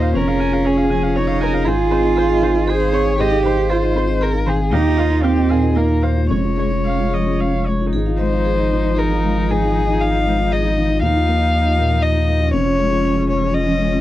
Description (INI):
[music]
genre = neoclassical piano and strings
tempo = 118 BPM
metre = 3/4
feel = rubato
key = Ab major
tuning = A4 = 439 Hz
[part]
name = muted violin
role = melody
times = 0.0-14.0 s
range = F4 to F5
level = -22 LUFS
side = left 4 dB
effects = none
[part]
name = muted cello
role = second line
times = 0.0-14.0 s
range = F3 to Ab4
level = -22 LUFS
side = right 5 dB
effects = none
[part]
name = felt-muted upright piano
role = accompaniment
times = 0.0-14.0 s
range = Eb2 to Bb4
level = -22 LUFS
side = left 4 dB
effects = none
[part]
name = muted viola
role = accompaniment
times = 0.0-14.0 s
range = Db4 to Ab5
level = -27 LUFS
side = right 3 dB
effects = none
[part]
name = saturated sub bass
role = bass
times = 0.0-14.0 s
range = F1 to Eb2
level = -20 LUFS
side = equal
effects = none
[part]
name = vibraphone with hard mallets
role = arpeggios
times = 0.2-13.9 s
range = Db4 to F5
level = -27 LUFS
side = right 4 dB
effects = none
[sound]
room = little or no reverb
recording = dry, close 1970s-style studio recording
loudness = -15 LUFS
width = side -14 dB against mid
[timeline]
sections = 0.0-7.9 A section; 7.9-14.0 B section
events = none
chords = 0.2 Db/F; 1.7 Ab6; 4.7 Ebsus2; 6.3 Db/F; 7.9 Ab6; 11.0 Ebsus2; 12.5 Db/F